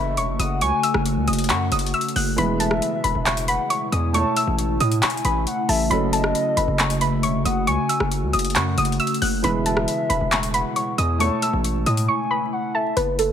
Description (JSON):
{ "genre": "hip hop, trap", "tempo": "136 BPM", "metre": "4/4", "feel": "half-time", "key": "F# dorian", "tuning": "A4 = 440 Hz", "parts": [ { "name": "soft round pluck", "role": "melody", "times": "0.0-13.3 s", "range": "A4 to F#6", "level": "-24 LUFS", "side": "equal", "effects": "chorus, low-pass filter, digital delay" }, { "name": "hollow clarinet-like synth lead", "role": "second line", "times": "0.0-13.0 s", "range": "D#5 to A5", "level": "-28 LUFS", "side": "left 3 dB", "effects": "chorus, digital delay" }, { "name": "felt-muted upright piano", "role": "accompaniment", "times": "0.0-13.0 s", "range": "E3 to C#5", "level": "-29 LUFS", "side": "right 5 dB", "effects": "low-pass filter" }, { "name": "glassy FM pad", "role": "sustained chords", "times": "0.0-13.0 s", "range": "B2 to F#4", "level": "-27 LUFS", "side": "left 1 dB", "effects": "ensemble chorus, built-in reverb" }, { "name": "distorted 808-style bass", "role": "bass", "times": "0.0-13.3 s", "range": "E1 to A2", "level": "-24 LUFS", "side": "equal", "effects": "distortion" }, { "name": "trap drum kit", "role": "drums", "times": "0.2-13.3 s", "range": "handclaps, hi-hat, rim click", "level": "-26 LUFS", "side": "left 1 dB", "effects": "none" } ], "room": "light reverb, digital ambience", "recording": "vinyl crackle", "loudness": "-19 LUFS", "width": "side -9 dB against mid", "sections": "0.0-13.0 A section", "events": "break 12.1-13.0", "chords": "0.0 F#m; 2.4 E; 4.1 A; 5.9 F#m; 9.4 E; 11.2 A", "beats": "0.17 | 0.61 1.06 1.50 1.94 | 2.38 2.82 3.26 3.70 | 4.14 4.58 5.03 5.47 | 5.91 6.35 6.79 7.23 | 7.67 8.12 8.56 9.00 | 9.44 9.88 10.32 10.76 | 11.20 11.64 12.09 12.53 | 12.97" }